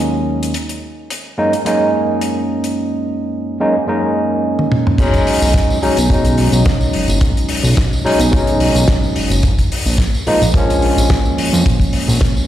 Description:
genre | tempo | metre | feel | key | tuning
nu-disco, nu disco | 108 BPM | 4/4 | straight | unclear | A4 = 440 Hz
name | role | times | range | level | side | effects
barky tine electric piano | accompaniment | 0.0-12.5 s | Eb2 to Eb4 | -16 LUFS | equal | overdrive, slapback echo
damped 70s drum kit | drums | 0.4-12.5 s | crash cymbal, hi-hat, snare drum, tambourine, toms | -21 LUFS | left 1 dB | studio reverb
fat analog bass | bass | 5.0-12.2 s | F#1 to F2 | -15 LUFS | equal | sidechain pumping
kick drum | drums | 5.0-12.3 s | none | -15 LUFS | equal | studio reverb
room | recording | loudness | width
light reverb, studio ambience | played on a big sound system in a bare room, large studio reverb | -13 LUFS | side -12 dB against mid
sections
0.0-5.0 A section; 5.0-12.5 B section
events
drum fill 4.6-5.0; drop 5.0-12.5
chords
0.0 Ebm11; 0.5 Gb6; 5.0 B69; 9.4 Bb7(no3)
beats
| 0.55 1.10 1.66 2.21 | 2.77 3.32 3.88 4.43 | 4.99 5.55 6.10 6.66 | 7.21 7.77 8.32 8.88 | 9.43 9.99 10.55 11.10 | 11.66 12.21

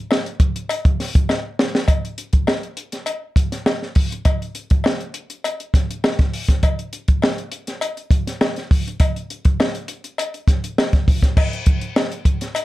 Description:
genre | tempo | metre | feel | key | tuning
funk | 101 BPM | 4/4 | straight | none | none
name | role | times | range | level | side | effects
compact cocktail drum kit | drums | 0.1-12.6 s | crash cymbal, hi-hat, kick drum, snare drum | -17 LUFS | equal | none
cowbell | percussion | 0.1-12.6 s | none | -26 LUFS | left 4 dB | none
room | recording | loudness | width
light reverb | dark, warm production | -17 LUFS | side -17 dB against mid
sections
0.0-1.9 A section; 1.9-11.4 B section; 11.4-12.6 C section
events
drum fill 1.3-1.9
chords
none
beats
0.10 0.70 1.29 | 1.88 2.48 3.07 3.66 | 4.26 4.85 5.44 6.04 | 6.63 7.22 7.81 8.41 | 9.00 9.59 10.18 10.77 | 11.37 11.96 12.55

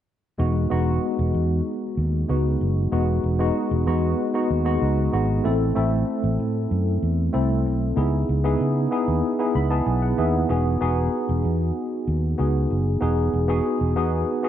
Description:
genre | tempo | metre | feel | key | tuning
polished 1980s jazz-funk pop | 95 BPM | 4/4 | straight | E major | A4 = 440 Hz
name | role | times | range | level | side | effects
tine electric piano | accompaniment | 0.4-14.5 s | G#3 to B5 | -23 LUFS | equal | medium stereo tremolo, lush chorus
fingered electric bass | bass | 0.4-14.2 s | E1 to C#3 | -22 LUFS | equal | none
room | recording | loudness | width
light reverb | dark, warm production | -20 LUFS | side -10 dB against mid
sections
0.4-14.5 A section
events
tine electric piano fill 9.2-10.5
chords
0.4 Emaj7; 5.4 Am; 8.0 C#m7; 10.5 Emaj7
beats
| 0.39 1.03 1.66 2.29 | 2.92 3.55 4.18 4.82 | 5.45 6.08 6.71 7.34 | 7.97 8.60 9.23 9.87 | 10.50 11.13 11.76 12.39 | 13.02 13.65 14.28

